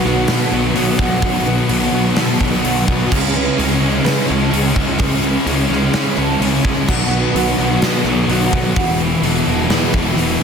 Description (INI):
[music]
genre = rock, shoegaze and dream pop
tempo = 128 BPM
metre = 4/4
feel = straight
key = unclear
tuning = A4 = 440 Hz
[part]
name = picked twelve-string acoustic guitar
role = arpeggios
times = 0.0-10.4 s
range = F#4 to B4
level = -24 LUFS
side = right 6 dB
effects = analog chorus, analog delay
[part]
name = overdriven semi-hollow guitar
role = riff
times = 0.0-10.4 s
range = B2 to E4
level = -21 LUFS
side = right 13 dB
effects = reverse reverb
[part]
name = thick fuzz guitar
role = riff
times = 0.0-10.4 s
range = E2 to C#4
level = -19 LUFS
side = left 8 dB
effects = distortion, lush chorus
[part]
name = tight distorted guitar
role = riff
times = 0.0-10.4 s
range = E2 to C#4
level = -22 LUFS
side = left 1 dB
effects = distortion
[part]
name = fuzz picked electric bass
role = bass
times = 0.1-10.4 s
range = E1 to C#3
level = -21 LUFS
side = equal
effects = overdrive
[part]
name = gated 80s drum kit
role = drums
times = 0.1-10.3 s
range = crash cymbal, hi-hat, kick drum, snare drum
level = -21 LUFS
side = equal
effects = none
[sound]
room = light reverb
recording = dense, heavily limited modern master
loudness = -13 LUFS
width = side -6 dB against mid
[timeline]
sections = 0.0-10.4 A section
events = none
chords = 0.0 B; 3.1 C#m; 6.9 B; 8.8 Esus2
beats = 0.29 0.76 | 1.23 1.70 2.17 2.64 | 3.11 3.58 4.05 4.52 | 4.99 5.46 5.93 6.40 | 6.87 7.34 7.81 8.28 | 8.75 9.22 9.70 10.17